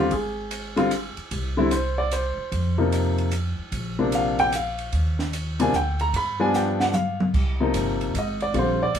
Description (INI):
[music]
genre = jazz piano trio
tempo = 150 BPM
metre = 3/4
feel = swing 65% on 8ths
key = C minor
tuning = A4 = 440 Hz
[part]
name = warm baby grand piano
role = melody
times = 0.0-9.0 s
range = C3 to B5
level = -22 LUFS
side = left 1 dB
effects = none
[part]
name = upright bass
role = bass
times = 0.0-9.0 s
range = G1 to G2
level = -27 LUFS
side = equal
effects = none
[part]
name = compact cocktail drum kit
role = drums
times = 0.1-9.0 s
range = crash cymbal, hi-hat, kick drum, ride cymbal, snare drum, toms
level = -30 LUFS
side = right 1 dB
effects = none
[sound]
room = moderate studio ambience, RT60 0.5 s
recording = band playing live in one room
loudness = -21 LUFS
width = side -8 dB against mid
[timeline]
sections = 0.0-7.3 A section; 7.3-9.0 B section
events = drum fill 6.5-7.3; grand piano solo 7.3-9.0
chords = 0.1 N.C.; 2.5 F5; 3.7 Bb; 4.9 Eb5; 6.1 G7; 7.3 Cm7